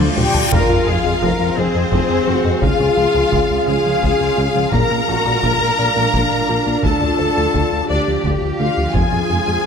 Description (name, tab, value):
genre	cinematic, hybrid orchestral and electronic film score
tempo	57 BPM (dotted quarters)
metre	6/8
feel	straight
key	unclear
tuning	A4 = 440 Hz
part	rich symphonic violin section	melody	0.0-9.7 s	A4 to Bb5	-22 LUFS	left 3 dB	none
part	dark symphonic violin section	second line	0.0-9.7 s	C5 to Bb5	-26 LUFS	left 2 dB	none
part	warm symphonic viola section	accompaniment	0.0-9.7 s	D3 to Bb4	-23 LUFS	left 1 dB	none
part	dark French horn section	sustained chords	0.0-9.7 s	C4 to F5	-24 LUFS	left 2 dB	none
part	deep dark ambient pad	sustained chords	0.0-9.7 s	F3 to F5	-25 LUFS	equal	chorus, built-in reverb
part	resonant blip pluck	arpeggios	0.0-9.6 s	Db3 to Bb4	-28 LUFS	equal	none
part	fat analog bass	riff	0.0-9.6 s	Db2 to Bb3	-23 LUFS	left 2 dB	none
part	dark tuba	bass	0.0-9.4 s	F1 to D2	-27 LUFS	right 3 dB	none
part	rich symphonic cello section	bass	0.0-9.7 s	A3 to Bb4	-24 LUFS	right 2 dB	none
part	rich symphonic double bass section	bass	0.0-9.5 s	Bb1 to F2	-25 LUFS	right 3 dB	none
part	taiko ensemble	drums	0.0-9.6 s	none	-23 LUFS	equal	none
part	reverse cymbal and impact	sound effects	0.0-2.6 s	none	-24 LUFS	left 2 dB	none
room	wet scoring stage reverb, RT60 1.7 s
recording	none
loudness	-14 LUFS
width	side -6 dB against mid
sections	0.5-9.7 A section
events	drum fill 0.0-0.5; reverse cymbal 0.0-0.5; impact 0.5-2.6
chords	0.0 Dm; 0.5 Fm; 2.6 Db; 4.7 Bb; 6.8 Dm; 8.9 Fm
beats	| 0.52 1.57 | 2.63 3.68 | 4.73 5.79 | 6.84 7.89 | 8.94